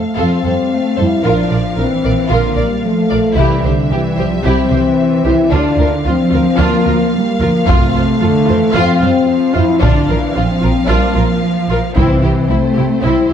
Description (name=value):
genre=cinematic, epic orchestral film score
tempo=112 BPM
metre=4/4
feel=straight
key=unclear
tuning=A4 = 440 Hz
part: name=warm symphonic violin section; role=melody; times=0.0-13.3 s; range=C5 to F5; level=-25 LUFS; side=left 3 dB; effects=none
part: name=mellow French horn section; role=sustained chords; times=0.0-13.3 s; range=G3 to E4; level=-16 LUFS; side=left 3 dB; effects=none
part: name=warm symphonic violin section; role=second line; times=0.2-13.3 s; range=C4 to D5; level=-22 LUFS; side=left 3 dB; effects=none
part: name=rich symphonic viola section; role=accompaniment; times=0.2-13.3 s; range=E4 to Bb4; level=-22 LUFS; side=right 2 dB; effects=none
part: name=rich symphonic double bass section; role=bass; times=0.2-13.3 s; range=Bb1 to F2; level=-18 LUFS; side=right 3 dB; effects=none
part: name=warm symphonic cello section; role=bass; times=0.2-13.3 s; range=C3 to A3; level=-18 LUFS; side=right 2 dB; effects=none
part: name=taiko ensemble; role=drums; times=3.4-4.4, 7.7-12.5 s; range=none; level=-18 LUFS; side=equal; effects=none
part: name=timpani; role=percussion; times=3.4-4.1, 12.0-12.7 s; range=C3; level=-20 LUFS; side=equal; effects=none
room=moderate scoring stage reverb, RT60 2.1 s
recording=dark, warm production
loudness=-11 LUFS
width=side -8 dB against mid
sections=0.0-13.3 A section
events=none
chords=0.0 F; 1.2 Bb; 3.4 C; 5.5 Bb/D; 7.7 F; 9.8 Bb; 12.0 C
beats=0.17 0.71 | 1.25 1.78 2.32 2.85 | 3.39 3.92 4.46 5.00 | 5.53 6.07 6.60 7.14 | 7.67 8.21 8.75 9.28 | 9.82 10.36 10.89 11.43 | 11.97 12.50 13.04